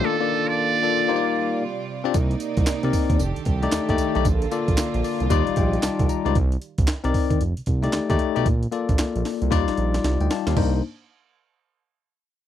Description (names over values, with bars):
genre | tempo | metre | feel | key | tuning
R&B, new jack swing | 114 BPM | 4/4 | swing 62% on 16ths | C dorian | A4 = 439 Hz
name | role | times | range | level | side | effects
trumpet with metal mute | melody | 0.0-1.5 s | A4 to D5 | -23 LUFS | right 7 dB | slapback echo
bell-like tine electric piano | accompaniment | 0.0-10.8 s | G3 to Bb5 | -23 LUFS | moving between left 11 dB and left 5 dB | auto-pan
warm studio string section | sustained chords | 0.0-6.3 s | C3 to D5 | -29 LUFS | right 7 dB | none
smooth synth bass | bass | 2.1-10.8 s | F1 to Eb2 | -24 LUFS | right 1 dB | none
breakbeat sampler-style drum kit | drums | 2.1-10.7 s | crash cymbal, handclaps, hi-hat, kick drum, snare drum, tambourine, toms | -23 LUFS | right 1 dB | none
room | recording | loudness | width
little or no reverb | dry, close 1970s-style studio recording | -20 LUFS | side -11 dB against mid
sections
0.0-2.1 A section; 2.1-10.6 B section; 10.6-12.5 C section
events
break 0.0-2.1; tine electric piano fill 4.8-6.4; drum fill 9.5-10.6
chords
0.0 Bbmaj7; 1.1 Ebmaj9; 1.6 G7sus4; 2.1 Cm9; 3.2 F13; 4.2 Bbmaj7; 5.3 Ebmaj9; 6.4 Cm9; 7.4 F13; 8.5 Bbmaj7; 9.5 Ebmaj9; 10.6 Cm9